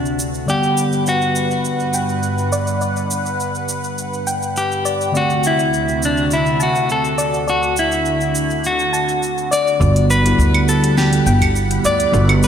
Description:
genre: sunset chillout.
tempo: 103 BPM.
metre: 4/4.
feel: straight.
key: G major.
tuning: A4 = 437 Hz.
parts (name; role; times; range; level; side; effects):
clean electric guitar; melody; 0.0-12.5 s; D4 to D5; -18 LUFS; left 1 dB; spring reverb, ping-pong delay.
bell-like tine electric piano; accompaniment; 0.0-12.5 s; D3 to F#5; -21 LUFS; equal; auto-pan.
lush unison pad; sustained chords; 0.0-12.5 s; D2 to B5; -24 LUFS; equal; chorus, phaser.
smooth R&B drum kit; drums; 0.1-12.5 s; claves, hi-hat, shaker, snare drum; -26 LUFS; right 3 dB; overdrive, small room ambience.
soft round pluck; arpeggios; 0.5-12.4 s; D5 to A5; -26 LUFS; left 1 dB; chorus, ping-pong delay.
upright bass; bass; 9.8-12.5 s; G1 to D2; -16 LUFS; equal; none.
electronic kick drum; drums; 9.8-11.5 s; none; -20 LUFS; equal; small room ambience.
room: wet lush hall reverb, RT60 2.1 s.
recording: bright 1980s-style digital production.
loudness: -15 LUFS.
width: side -8 dB against mid.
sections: 0.0-9.8 A section; 9.8-12.5 B section.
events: none.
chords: 0.5 Gmaj7; 5.1 D7; 9.8 Gmaj7.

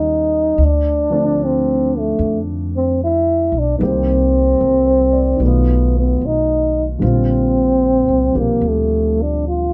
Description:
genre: jazz ballad.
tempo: 75 BPM.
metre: 4/4.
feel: swing 66% on 8ths.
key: unclear.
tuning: A4 = 440 Hz.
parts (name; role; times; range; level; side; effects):
trombone with bucket mute; melody; 0.0-9.7 s; A3 to F4; -18 LUFS; equal; none.
dark baby grand piano; accompaniment; 0.0-9.7 s; Bb2 to D5; -25 LUFS; equal; none.
upright bass; bass; 0.0-9.7 s; Bb1 to F2; -22 LUFS; equal; none.
room: light reverb.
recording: none.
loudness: -16 LUFS.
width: mono.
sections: 0.0-9.7 A section.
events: none.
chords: 0.0 Eb9; 0.6 Dm7; 3.8 Cm7; 5.4 B7#11; 7.0 Bb69.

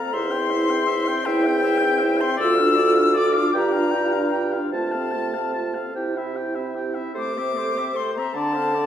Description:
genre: classical, slow romantic movement for wind quintet.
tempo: 49-54 BPM (dotted quarters).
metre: 6/8.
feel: rubato.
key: unclear.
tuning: A4 = 441 Hz.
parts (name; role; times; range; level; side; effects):
silver concert flute; melody; 0.0-8.9 s; G5 to E6; -24 LUFS; left 5 dB; none.
warm oboe; second line; 0.0-8.9 s; C5 to A5; -30 LUFS; left 2 dB; none.
mellow French horn; accompaniment; 0.0-8.9 s; A3 to F4; -27 LUFS; right 1 dB; none.
warm clarinet; accompaniment; 0.0-8.9 s; E4 to E5; -28 LUFS; right 3 dB; none.
mellow bassoon; bass; 0.1-8.9 s; D2 to D3; -24 LUFS; right 1 dB; none.
room: wet recital hall reverb, RT60 1.5 s.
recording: heard from further back in the room.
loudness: -19 LUFS.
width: side -10 dB against mid.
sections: 0.0-8.9 A section.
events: none.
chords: 0.1 C/E; 2.4 Dm; 3.6 Gm7; 4.7 F/C; 5.9 C; 7.2 Am/C; 8.4 Dm7.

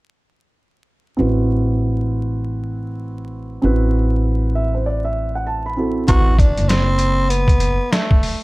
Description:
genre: hip hop, jazz-hop.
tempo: 98 BPM.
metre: 4/4.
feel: swing 62% on 16ths.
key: A dorian.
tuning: A4 = 439 Hz.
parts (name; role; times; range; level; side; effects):
dark baby grand piano; accompaniment; 1.2-6.3 s; C4 to B5; -21 LUFS; right 2 dB; low-pass filter.
upright bass; bass; 1.2-7.8 s; F#1 to A1; -19 LUFS; equal; none.
growling tenor saxophone; melody; 6.1-8.4 s; A3 to F#4; -20 LUFS; equal; none.
trip hop sampler-style drum kit; drums; 6.1-8.4 s; hi-hat, kick drum, snare drum; -17 LUFS; equal; none.
room: studio ambience.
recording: vinyl crackle.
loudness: -16 LUFS.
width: side -21 dB against mid.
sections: 1.2-6.1 A section; 6.1-8.4 B section.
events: filter sweep on grand piano 1.2-6.1; grand piano fill 4.2-6.1.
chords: 1.2 Am69.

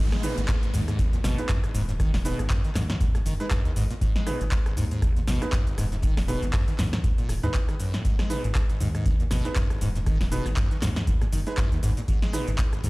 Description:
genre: acid house.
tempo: 119 BPM.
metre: 4/4.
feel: swing 57% on 16ths.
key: G# minor.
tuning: A4 = 444 Hz.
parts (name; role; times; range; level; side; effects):
acid bass, saw; riff; 0.0-12.9 s; G#1 to G#3; -30 LUFS; equal; tube saturation, lush chorus, cassette tape, sidechain pumping, tape echo.
round analog bass; bass; 0.0-12.9 s; D#1 to D#2; -28 LUFS; equal; sidechain pumping.
downlifter; sound effects; 0.0-4.0 s; none; -38 LUFS; equal; none.
electro analog drum machine; drums; 0.1-12.9 s; handclaps, hi-hat, rim click, shaker, snare drum; -34 LUFS; equal; none.
warm concert grand piano; stabs; 0.2-12.4 s; D#4 to B4; -35 LUFS; right 2 dB; tape echo.
vintage brush drum kit; drums; 0.2-12.9 s; hi-hat, snare drum; -49 LUFS; left 2 dB; none.
electronic kick drum; drums; 0.5-12.7 s; none; -25 LUFS; equal; none.
room: digital ambience.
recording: played on a big sound system in a bare room, large studio reverb.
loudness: -22 LUFS.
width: side -22 dB against mid.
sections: 0.0-12.9 A section.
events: drop 0.0-12.9.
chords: 0.0 G#m.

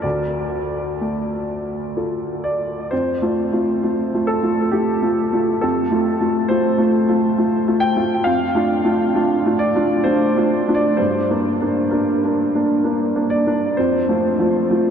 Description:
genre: neoclassical minimalist piano.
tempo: 61-69 BPM.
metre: 3/4.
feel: rubato.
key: unclear.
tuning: A4 = 440 Hz.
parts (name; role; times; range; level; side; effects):
clear upright piano; solo; 0.0-14.9 s; D2 to G5; -16 LUFS; equal; tape echo.
room: wet huge ambient reverb, RT60 7.9 s.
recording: dreamy mix soaked in reverb.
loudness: -16 LUFS.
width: side -7 dB against mid.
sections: 0.0-2.9 A section; 2.9-14.9 A section.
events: none.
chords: 0.0 Dm; 2.9 F; 8.3 Dm/F; 11.0 Gm; 13.8 F.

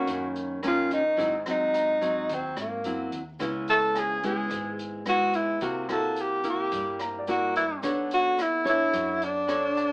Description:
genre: bossa nova.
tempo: 108 BPM.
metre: 4/4.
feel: straight.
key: unclear.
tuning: A4 = 438 Hz.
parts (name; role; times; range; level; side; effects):
breathy tenor saxophone; melody; 0.0-9.9 s; A#3 to A4; -24 LUFS; equal; none.
nylon-string guitar; accompaniment; 0.0-9.9 s; F#2 to C#5; -30 LUFS; equal; none.
warm grand piano; accompaniment; 0.0-9.9 s; D5 to C#6; -39 LUFS; equal; none.
hollow-body short-scale fingered electric bass; bass; 0.0-9.9 s; G#1 to G#2; -46 LUFS; equal; none.
open jazz drum kit; drums; 0.1-9.9 s; hi-hat, kick drum, rim click; -41 LUFS; equal; none.
egg shaker; percussion; 0.1-9.9 s; none; -57 LUFS; right 1 dB; none.
room: moderate studio reverb, RT60 0.5 s.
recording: band playing live in one room, AM radio sound.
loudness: -24 LUFS.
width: side -29 dB against mid.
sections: 0.0-9.9 A section.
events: none.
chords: 0.0 Bmaj9; 1.2 G#7b13; 3.4 C#m7; 5.6 C7#11; 7.8 Bm9.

